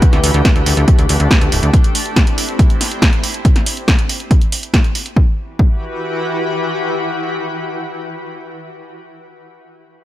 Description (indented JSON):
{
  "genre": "uplifting trance",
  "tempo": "140 BPM",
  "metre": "4/4",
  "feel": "straight",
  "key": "E minor",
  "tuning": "A4 = 436 Hz",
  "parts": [
    { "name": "shimmering ambient pad", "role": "sustained chords", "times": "0.0-8.4 s", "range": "E3 to B4", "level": "-22 LUFS", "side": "left 1 dB", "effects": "chorus, built-in reverb, sidechain pumping" },
    { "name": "electronic kick drum", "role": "drums", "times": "0.0-5.7 s", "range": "none", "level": "-12 LUFS", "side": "equal", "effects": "none" },
    { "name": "punchy analog drum machine", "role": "drums", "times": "0.0-5.1 s", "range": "hi-hat, snare drum", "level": "-18 LUFS", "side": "equal", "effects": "sidechain pumping on hats, sidechain pumping on cymbals, sidechain pumping on perc" },
    { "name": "plucky analog bass", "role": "bass", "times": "0.1-1.7 s", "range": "D1 to D2", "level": "-14 LUFS", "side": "equal", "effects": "sidechain pumping" }
  ],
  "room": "little or no reverb",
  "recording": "none",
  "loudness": "-12 LUFS",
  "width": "side -14 dB against mid",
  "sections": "0.0-5.2 A section; 5.2-8.6 B section",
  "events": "none",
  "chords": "0.0 Dsus4; 1.7 C; 3.4 N.C.; 5.2 Emadd9",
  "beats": "| 0.02 0.45 0.88 1.31 | 1.74 2.16 2.59 3.02 | 3.45 3.88 4.31 4.74 | 5.16 5.59 6.02 6.45 | 6.88 7.31 7.74 8.16"
}